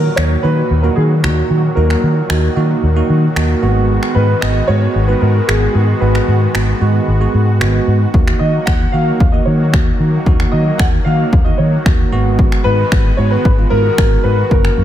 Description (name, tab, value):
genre	dance-pop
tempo	113 BPM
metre	4/4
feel	straight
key	G# minor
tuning	A4 = 440 Hz
part	warm concert grand piano	melody	0.0-14.8 s	F#4 to F#5	-20 LUFS	left 1 dB	analog chorus, tape echo
part	supersaw pad	sustained chords	0.0-14.8 s	A#2 to F#4	-22 LUFS	equal	sidechain pumping
part	vintage muted fingered electric bass	bass	0.0-14.8 s	F#1 to D#3	-14 LUFS	equal	sidechain pumping
part	bell-like tine electric piano	accompaniment	0.2-14.8 s	G#3 to F#4	-20 LUFS	right 5 dB	wide subtle chorus
part	house drum kit	drums	0.2-14.8 s	finger snaps, kick drum	-15 LUFS	equal	overdrive
room	moderate plate reverb, RT60 1.7 s, digital ambience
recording	dreamy mix soaked in reverb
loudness	-11 LUFS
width	side -11 dB against mid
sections	0.0-14.8 A section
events	none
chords	0.0 D#m; 3.6 G#m7; 8.1 D#m; 12.1 G#m7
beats	0.17 0.71 1.24 | 1.77 2.30 2.83 3.36 | 3.89 4.42 4.95 5.49 | 6.02 6.55 7.08 7.61 | 8.14 8.67 9.20 9.73 | 10.26 10.79 11.33 11.86 | 12.39 12.92 13.45 13.98 | 14.51